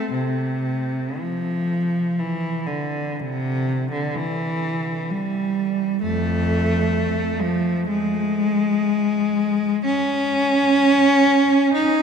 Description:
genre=classical, free, expressive piece for unaccompanied cello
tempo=51-66 BPM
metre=4/4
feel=rubato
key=A minor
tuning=A4 = 440 Hz
part: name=rich cello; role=solo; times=0.0-12.0 s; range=F2 to D#4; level=-19 LUFS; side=equal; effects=none
room=wet cathedral reverb, RT60 6.5 s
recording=in a vast, echoing space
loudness=-19 LUFS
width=side -6 dB against mid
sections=0.0-12.0 A section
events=none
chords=none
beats=| 0.12 1.23 2.21 3.19 | 4.15 5.09 6.01 6.94 | 7.87 8.80 9.85 10.81 | 11.73

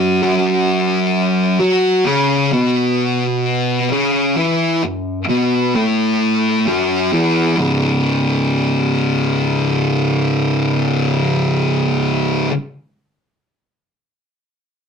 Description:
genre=metal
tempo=65 BPM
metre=4/4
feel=straight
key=C# minor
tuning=A4 = 440 Hz
part: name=thick fuzz guitar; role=riff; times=0.0-12.5 s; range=C#2 to F#4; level=-14 LUFS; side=equal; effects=distortion
room=moderate small room reverb, RT60 0.5 s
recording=rough rehearsal-room recording, tube saturation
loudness=-14 LUFS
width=side -6 dB against mid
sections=0.0-7.6 A section; 7.6-11.3 B section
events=none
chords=0.2 F#5; 7.6 C#5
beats=| 0.23 1.14 2.06 2.98 | 3.90 4.82 5.74 6.66 | 7.58 8.51 9.43 10.36

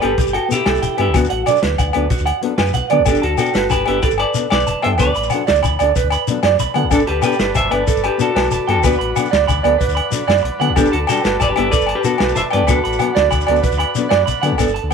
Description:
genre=highlife guitar band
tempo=125 BPM (dotted quarters)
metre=12/8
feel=straight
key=G major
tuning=A4 = 440 Hz
part: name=semi-hollow electric guitar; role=melody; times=0.0-14.2 s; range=D4 to E5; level=-19 LUFS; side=left 3 dB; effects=none
part: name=fingerpicked acoustic archtop guitar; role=accompaniment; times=0.0-14.9 s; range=F#3 to A4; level=-23 LUFS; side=left 11 dB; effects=none
part: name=electric guitar through a small old amp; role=arpeggios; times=0.0-14.9 s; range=F#4 to B5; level=-18 LUFS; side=right 13 dB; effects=spring reverb, tape echo
part: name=sub bass with octave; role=bass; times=0.0-14.9 s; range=E1 to D3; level=-22 LUFS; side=equal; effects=none
part: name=vintage drum kit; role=drums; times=0.0-14.9 s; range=hi-hat, kick drum, snare drum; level=-22 LUFS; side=equal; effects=none
part: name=agogo bells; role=percussion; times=0.0-14.9 s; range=none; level=-24 LUFS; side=left 13 dB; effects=none
part: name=shekere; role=percussion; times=0.2-14.7 s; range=none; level=-25 LUFS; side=left 7 dB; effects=none
part: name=combo organ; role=sustained chords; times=6.9-14.6 s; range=B4 to B5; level=-28 LUFS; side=left 1 dB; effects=none
room=light reverb, small room ambience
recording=1960s-style stereo with parts hard left and right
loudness=-14 LUFS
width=side -6 dB against mid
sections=0.0-14.6 A section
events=none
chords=0.0 Gadd9; 1.1 D6; 3.1 Gadd9; 5.0 D6; 6.9 Gadd9; 8.8 D6; 10.8 Gadd9; 12.7 D6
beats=0.17 0.66 | 1.14 1.62 2.10 2.59 | 3.07 3.55 4.03 4.51 | 4.99 5.47 5.96 6.44 | 6.92 7.40 7.88 8.36 | 8.84 9.32 9.80 10.28 | 10.76 11.24 11.72 12.20 | 12.68 13.16 13.64 14.12 | 14.60

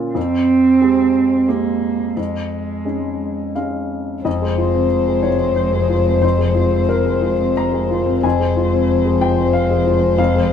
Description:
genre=neoclassical piano and strings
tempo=84-94 BPM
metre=3/4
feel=rubato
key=unclear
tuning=A4 = 440 Hz
part: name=warm upright piano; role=accompaniment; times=0.0-10.5 s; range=F2 to Bb5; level=-19 LUFS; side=left 2 dB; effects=none
part: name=muted cello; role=second line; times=0.1-10.5 s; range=Ab3 to C4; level=-20 LUFS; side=right 5 dB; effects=none
part: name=muted violin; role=melody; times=4.2-10.5 s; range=C5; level=-20 LUFS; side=left 5 dB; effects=none
part: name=muted double bass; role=bass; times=4.2-10.5 s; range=F1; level=-20 LUFS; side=left 1 dB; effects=none
room=light reverb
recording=band playing live in one room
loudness=-15 LUFS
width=side -8 dB against mid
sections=0.0-4.3 A section; 4.3-10.5 B section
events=none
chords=0.2 Fmadd9; 2.2 Dbadd9/F; 4.3 Fm7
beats=| 0.16 0.82 1.49 | 2.17 2.86 3.56 | 4.25 4.92 5.57 | 6.23 6.89 7.58 | 8.24 8.89 9.54 | 10.18

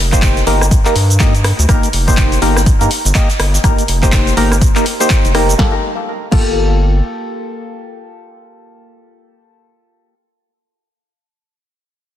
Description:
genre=deep house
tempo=123 BPM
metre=4/4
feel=swing 60% on 16ths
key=G minor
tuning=A4 = 440 Hz
part: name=round analog bass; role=bass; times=0.0-7.0 s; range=F1 to G2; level=-15 LUFS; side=equal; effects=sidechain pumping
part: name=percussive organ stab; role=stabs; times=0.1-10.2 s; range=Bb3 to Eb5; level=-17 LUFS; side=left 1 dB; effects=chorus, phaser, sidechain pumping, ping-pong delay
part: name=electronic kick drum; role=drums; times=0.1-6.5 s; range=none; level=-13 LUFS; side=equal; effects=none
part: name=punchy analog drum machine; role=drums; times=0.1-6.5 s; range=crash cymbal, handclaps, hi-hat, rim click, shaker, snare drum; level=-18 LUFS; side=equal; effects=none
part: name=jazz brush drum kit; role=drums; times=0.2-5.5 s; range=hi-hat, snare drum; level=-28 LUFS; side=left 4 dB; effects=none
room=light reverb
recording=dense, heavily limited modern master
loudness=-10 LUFS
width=side -11 dB against mid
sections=0.0-5.6 A section; 5.6-9.5 B section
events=drop 0.0-5.6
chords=0.0 Eb; 5.6 Gm9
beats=0.23 0.71 1.20 | 1.69 2.18 2.66 3.15 | 3.64 4.13 4.62 5.10 | 5.59 6.08 6.57 7.05 | 7.54 8.03 8.52 9.01

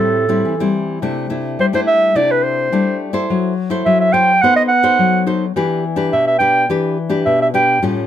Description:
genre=samba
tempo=106 BPM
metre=4/4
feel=straight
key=C major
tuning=A4 = 440 Hz
part: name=warm clarinet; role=melody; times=0.0-7.8 s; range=A4 to G5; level=-13 LUFS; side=right 2 dB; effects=none
part: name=nylon-string guitar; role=accompaniment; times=0.0-8.1 s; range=A2 to C5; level=-17 LUFS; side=left 3 dB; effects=none
room=light reverb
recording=close, detailed microphones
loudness=-13 LUFS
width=side -10 dB against mid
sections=0.0-1.0 A section; 1.0-8.1 B section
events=none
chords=0.0 Am7; 1.0 C69; 3.3 F#m7b5; 4.4 B7b9; 5.6 Em7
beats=0.45 | 1.02 1.59 2.16 2.73 | 3.29 3.86 4.43 5.00 | 5.56 6.13 6.70 7.26 | 7.83

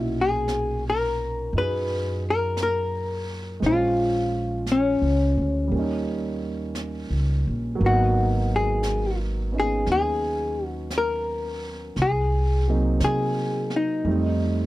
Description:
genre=jazz ballad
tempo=57 BPM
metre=4/4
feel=swing 68% on 8ths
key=G# minor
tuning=A4 = 440 Hz
part: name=hollow-body jazz guitar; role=melody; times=0.0-14.7 s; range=C#4 to B4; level=-24 LUFS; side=left 2 dB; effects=none
part: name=warm concert grand piano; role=accompaniment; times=0.0-14.7 s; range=A#2 to B#4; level=-29 LUFS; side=right 4 dB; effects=none
part: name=upright bass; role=bass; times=0.0-14.7 s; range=G#1 to C3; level=-26 LUFS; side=equal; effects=none
part: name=jazz brush drum kit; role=drums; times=0.5-14.7 s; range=brushed snare drum, hi-hat, snare drum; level=-40 LUFS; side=right 1 dB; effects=none
room=little or no reverb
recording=dry, close 1970s-style studio recording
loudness=-22 LUFS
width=side -17 dB against mid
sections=0.0-14.7 A section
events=none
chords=0.0 Bmaj9; 3.6 A#m7; 5.7 D#7; 7.8 G#m9; 12.0 Cm7b5; 14.1 F7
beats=0.48 1.54 2.58 | 3.63 4.68 5.72 6.76 | 7.80 8.84 9.88 10.93 | 11.97 13.02 14.07

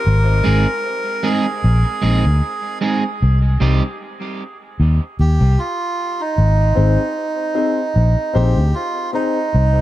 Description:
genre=reggae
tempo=76 BPM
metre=4/4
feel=swing 55% on 16ths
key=unclear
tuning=A4 = 440 Hz
part: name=melodica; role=melody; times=0.0-9.8 s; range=Eb4 to Bb4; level=-22 LUFS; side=right 2 dB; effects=dub echo
part: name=vintage muted fingered electric bass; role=bass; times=0.1-9.8 s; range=Ab1 to Eb2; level=-13 LUFS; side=equal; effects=none
part: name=electric guitar at the edge of break-up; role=accompaniment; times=0.4-3.8 s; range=G3 to Ab4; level=-22 LUFS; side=right 3 dB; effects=dub echo
part: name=dark upright piano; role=stabs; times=6.8-9.3 s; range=C4 to C5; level=-24 LUFS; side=left 4 dB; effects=dub echo
room=moderate spring reverb, RT60 2.1 s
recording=dark, warm production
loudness=-15 LUFS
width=side -14 dB against mid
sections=0.0-9.8 A section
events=break 0.0-6.4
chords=0.0 Ab; 3.2 Cm; 6.4 Ab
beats=| 0.05 0.84 1.63 2.42 | 3.21 3.99 4.78 5.57 | 6.36 7.15 7.94 8.73 | 9.52

